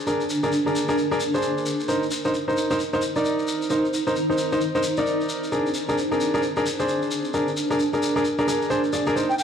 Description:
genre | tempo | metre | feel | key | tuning
UK garage, two-step garage | 132 BPM | 4/4 | swing 61% on 16ths | unclear | A4 = 440 Hz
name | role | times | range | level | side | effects
clear grand piano | stabs | 0.0-9.3 s | D4 to D5 | -23 LUFS | equal | ping-pong delay
granular cloud pad | texture | 0.0-9.4 s | D4 to Bb5 | -27 LUFS | right 1 dB | built-in reverb
shekere | percussion | 0.1-9.4 s | none | -32 LUFS | left 3 dB | none
electronic hi-hat | drums | 0.3-9.4 s | none | barely audible | none | none
reedy concert flute | melody | 9.3-9.4 s | G5 | -22 LUFS | right 1 dB | none
room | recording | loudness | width
light reverb, studio reverb | dark, warm production, vinyl crackle | -21 LUFS | side -8 dB against mid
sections
0.0-9.4 A section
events
none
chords
0.0 Bb7; 1.9 Cm7; 5.5 Bb7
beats
| 0.07 0.52 0.98 1.43 | 1.89 2.34 2.79 3.25 | 3.70 4.16 4.61 5.07 | 5.52 5.98 6.43 6.88 | 7.34 7.79 8.25 8.70 | 9.16

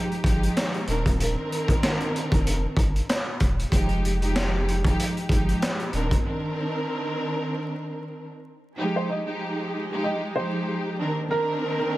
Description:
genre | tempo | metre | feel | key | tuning
hip hop, boom-bap hip-hop | 95 BPM | 4/4 | swing 56% on 16ths | C minor | A4 = 440 Hz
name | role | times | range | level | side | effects
dark studio string section | accompaniment | 0.0-12.0 s | Eb3 to Bb4 | -27 LUFS | right 1 dB | high-pass filter, low-pass filter
raw garage drum kit | drums | 0.1-6.2 s | handclaps, hi-hat, kick drum, snare drum | -24 LUFS | equal | none
warm sub bass | bass | 0.2-6.2 s | Eb1 to G1 | -26 LUFS | equal | none
clear studio string section | sustained chords | 8.8-12.0 s | Eb3 to G4 | -36 LUFS | equal | high-pass filter, low-pass filter
dark upright piano | melody | 9.0-12.0 s | Bb4 to Eb5 | -28 LUFS | right 1 dB | high-pass filter, low-pass filter
room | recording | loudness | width
light reverb, small room ambience | vinyl crackle | -23 LUFS | side -17 dB against mid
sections
0.0-8.8 A section; 8.8-12.0 B section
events
break 6.2-8.8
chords
0.0 Fm9; 0.9 Cm9/Eb; 3.7 Fm9; 5.9 Cm9/Eb; 8.8 Fm9; 11.0 Cm9/Eb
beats
0.56 | 1.19 1.82 2.46 3.09 | 3.72 4.35 4.98 5.61 | 6.25 6.88 7.51 8.14 | 8.77 9.40 10.04 10.67 | 11.30 11.93

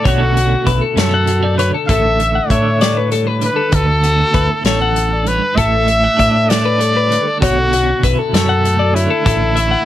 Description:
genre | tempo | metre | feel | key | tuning
math rock and midwest emo | 65 BPM (dotted quarters) | 6/8 | straight | unclear | A4 = 444 Hz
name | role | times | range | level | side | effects
bright trumpet | melody | 0.0-9.8 s | E4 to E5 | -17 LUFS | equal | none
clean electric guitar | accompaniment | 0.0-9.8 s | D2 to E4 | -21 LUFS | right 5 dB | tremolo
twelve-string electric guitar | arpeggios | 0.0-9.8 s | F#4 to F#5 | -20 LUFS | left 9 dB | none
growling fingered electric bass | bass | 0.1-9.7 s | A1 to A2 | -17 LUFS | equal | overdrive
loose indie drum kit | drums | 0.1-9.7 s | hi-hat, kick drum, snare drum | -18 LUFS | equal | none
room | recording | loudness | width
little or no reverb | none | -12 LUFS | side -12 dB against mid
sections
0.0-9.8 A section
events
none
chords
0.1 Bm11; 1.9 A7sus4; 3.7 D69; 5.6 A7sus4; 7.4 Bm11; 9.3 Asus4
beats
| 0.06 0.98 | 1.90 2.82 | 3.74 4.66 | 5.58 6.50 | 7.42 8.34 | 9.25

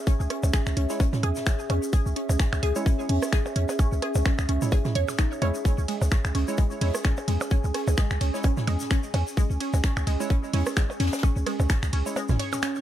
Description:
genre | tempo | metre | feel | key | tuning
minimal techno | 129 BPM | 4/4 | swing 56% on 16ths | C# minor | A4 = 440 Hz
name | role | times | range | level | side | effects
warbly tape-like pad | texture | 0.0-12.8 s | C#4 to G#5 | -33 LUFS | right 1 dB | chorus, built-in reverb, sidechain pumping
resonant blip pluck | riff | 0.1-12.7 s | G#3 to C#5 | -32 LUFS | equal | phaser, analog chorus, sidechain pumping, dub echo
electronic kick drum | drums | 0.1-11.8 s | none | -22 LUFS | equal | none
jazz brush drum kit | drums | 0.1-12.8 s | hi-hat, snare drum | -42 LUFS | left 3 dB | none
tube shaker | percussion | 0.1-12.8 s | none | -41 LUFS | left 3 dB | tape echo
punchy sub bass | bass | 0.2-12.4 s | G#1 to E2 | -24 LUFS | equal | sidechain pumping
garage drum kit | drums | 0.3-12.7 s | finger snaps, hi-hat, ride cymbal | -33 LUFS | equal | none
minimal click drum kit | percussion | 0.3-12.6 s | percussion blips, rim click, toms | -32 LUFS | right 3 dB | tape echo
wavetable chord stab | stabs | 0.9-12.2 s | G#3 to C#5 | -35 LUFS | right 3 dB | tape echo
room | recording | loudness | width
digital ambience | echo-heavy mix | -22 LUFS | side -12 dB against mid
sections
0.0-12.8 A section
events
kick drops out 12.2-12.8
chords
0.0 C#m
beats
| 0.07 0.54 1.00 1.47 | 1.93 2.40 2.86 3.33 | 3.79 4.26 4.72 5.19 | 5.65 6.12 6.58 7.05 | 7.51 7.98 8.44 8.91 | 9.37 9.84 10.30 10.77 | 11.23 11.70 12.16 12.63

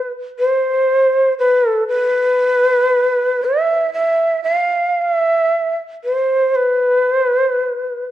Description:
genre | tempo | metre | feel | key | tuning
japanese traditional, Japanese chamber music | 59 BPM | 2/4 | rubato | unclear | A4 = 440 Hz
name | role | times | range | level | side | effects
breathy mellow shakuhachi | solo | 0.0-8.1 s | B4 to F5 | -14 LUFS | equal | none
room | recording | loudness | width
moderate recital hall reverb, RT60 1.4 s | dark, warm production | -14 LUFS | side -12 dB against mid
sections
0.0-8.1 A section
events
none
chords
none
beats
| 0.37 1.37 | 2.37 3.41 | 4.47 5.52 | 6.54 7.54

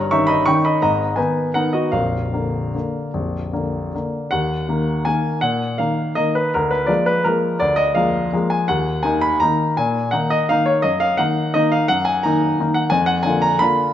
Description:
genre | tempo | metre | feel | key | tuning
classical, piano waltz | 147-186 BPM | 3/4 | rubato | Eb minor | A4 = 440 Hz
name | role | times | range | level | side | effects
clear baby grand piano | solo | 0.0-13.9 s | Bb0 to Db6 | -16 LUFS | left 1 dB | none
room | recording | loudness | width
moderate recital hall reverb, RT60 1.8 s | nothing above 8.0 kHz | -17 LUFS | side -10 dB against mid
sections
0.0-4.3 A section; 4.3-13.9 B section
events
none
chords
0.0 Eb7/G; 0.8 Abm; 1.9 Bb; 4.3 Ebm; 6.5 Bb7/D; 8.7 Ebm; 10.8 Ebm/Gb; 12.9 Bb/F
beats
0.11 0.47 | 0.82 1.17 1.54 | 1.93 2.33 2.74 | 3.13 3.53 3.93 | 4.32 4.68 5.05 | 5.42 5.78 6.16 | 6.53 6.89 7.25 | 7.61 7.96 8.33 | 8.69 9.05 9.41 | 9.77 10.12 10.49 | 10.85 11.19 11.55 | 11.90 12.24 12.59 | 12.92 13.26 13.61

